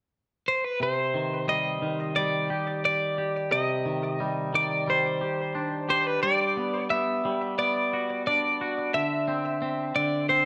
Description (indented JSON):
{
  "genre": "rock",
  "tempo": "88 BPM",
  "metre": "4/4",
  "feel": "straight",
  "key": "unclear",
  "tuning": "A4 = 440 Hz",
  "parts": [
    { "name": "twelve-string electric guitar", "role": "melody", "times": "0.5-10.5 s", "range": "B4 to E5", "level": "-28 LUFS", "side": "equal", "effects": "analog delay" },
    { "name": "twangy electric guitar", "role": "arpeggios", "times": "0.8-10.5 s", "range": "C3 to G4", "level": "-32 LUFS", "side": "equal", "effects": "analog delay" }
  ],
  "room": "wet large studio reverb, RT60 0.8 s, digital ambience",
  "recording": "none",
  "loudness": "-27 LUFS",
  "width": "mono",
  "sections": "0.8-10.5 A section",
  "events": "none",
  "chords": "0.0 N.C.; 0.8 Cmadd9; 6.2 Gmaj7; 8.9 D7sus2",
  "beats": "0.12 | 0.80 1.48 2.16 2.84 | 3.52 4.19 4.87 5.55 | 6.23 6.91 7.58 8.26 | 8.94 9.62 10.29"
}